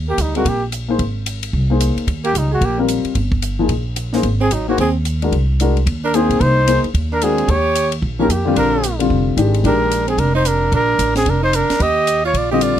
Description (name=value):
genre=jazz, small-group swing and bop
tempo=222 BPM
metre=4/4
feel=swing 61% on 8ths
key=Eb major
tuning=A4 = 442 Hz
part: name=upright bass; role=bass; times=0.0-12.8 s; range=F1 to F2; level=-19 LUFS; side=right 1 dB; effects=none
part: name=mellow trumpet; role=melody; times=0.1-12.8 s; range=Eb4 to Eb5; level=-18 LUFS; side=equal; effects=none
part: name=growling tenor saxophone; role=second line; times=0.1-12.8 s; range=Gb3 to G4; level=-22 LUFS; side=right 8 dB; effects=none
part: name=compact cocktail drum kit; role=drums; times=0.2-12.7 s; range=hi-hat, kick drum, ride cymbal, snare drum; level=-25 LUFS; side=equal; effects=none
part: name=dark baby grand piano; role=accompaniment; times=0.3-10.4, 12.5-12.8 s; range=D3 to C5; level=-19 LUFS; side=left 4 dB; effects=none
room=little or no reverb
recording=close, detailed microphones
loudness=-14 LUFS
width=side -10 dB against mid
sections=0.0-12.8 A section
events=none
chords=0.0 Eb; 1.0 Ab; 2.1 Eb; 4.2 Ab7; 7.5 Eb7; 8.6 Bb7; 11.8 Eb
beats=0.18 0.46 0.73 | 1.00 1.27 1.54 1.81 | 2.08 2.35 2.62 2.89 | 3.16 3.43 3.70 3.97 | 4.24 4.51 4.78 5.05 | 5.32 5.59 5.86 6.13 | 6.40 6.67 6.95 7.22 | 7.49 7.76 8.03 8.30 | 8.57 8.84 9.11 9.38 | 9.65 9.92 10.19 10.46 | 10.73 11.00 11.27 11.54 | 11.80 12.07 12.35 12.62